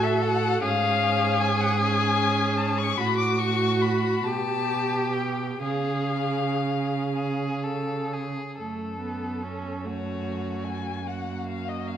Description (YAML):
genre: classical, slow romantic movement for string quartet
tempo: 39-52 BPM (dotted quarters)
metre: 6/8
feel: rubato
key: F# minor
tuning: A4 = 440 Hz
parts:
  - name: muted violin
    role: melody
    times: 0.0-12.0 s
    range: C#5 to D6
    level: -29 LUFS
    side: left 8 dB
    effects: none
  - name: muted violin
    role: second line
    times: 0.0-12.0 s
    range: F#4 to A4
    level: -29 LUFS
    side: left 2 dB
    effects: none
  - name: muted viola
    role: accompaniment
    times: 0.0-12.0 s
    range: A3 to G#4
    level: -31 LUFS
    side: right 3 dB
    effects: none
  - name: muted cello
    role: bass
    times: 0.0-12.0 s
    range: F#2 to C#3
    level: -28 LUFS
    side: right 4 dB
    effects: none
room: wet recital hall reverb, RT60 1.6 s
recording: none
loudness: -23 LUFS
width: side -9 dB against mid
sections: 0.0-8.6 A section; 8.6-12.0 B section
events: none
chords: 0.0 F#m/A; 0.6 C#/G#; 3.0 F#m/A; 4.3 G/B; 5.6 C#; 8.6 F#m; 11.1 G#7(no3)/F# (rootless)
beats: | 0.62 1.80 | 3.00 4.26 | 5.62 7.13 | 8.58 9.83 | 11.06